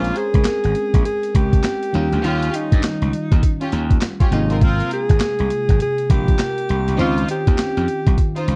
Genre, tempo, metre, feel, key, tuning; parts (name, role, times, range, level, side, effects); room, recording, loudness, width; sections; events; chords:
R&B, new jack swing; 101 BPM; 4/4; swing 62% on 16ths; A4 = 439 Hz
breathy alto saxophone; melody; 0.0-8.4 s; Eb4 to Ab4; -25 LUFS; equal; slapback echo
FM electric piano; accompaniment; 0.0-8.6 s; C3 to Bb4; -28 LUFS; equal; chorus, phaser
rich studio string section; stabs; 0.0-8.5 s; C4 to C5; -30 LUFS; equal; slapback echo
gritty slap bass; bass; 0.0-8.6 s; Ab1 to G2; -23 LUFS; equal; overdrive
boom bap sampler-style drum kit; drums; 0.0-8.6 s; handclaps, hi-hat, kick drum, snare drum; -19 LUFS; equal
little or no reverb; dry, close 1970s-style studio recording; -18 LUFS; mono
0.0-8.6 A section
0.0 Bbm9; 1.9 Eb9; 4.3 Ab69; 7.0 Dbmaj9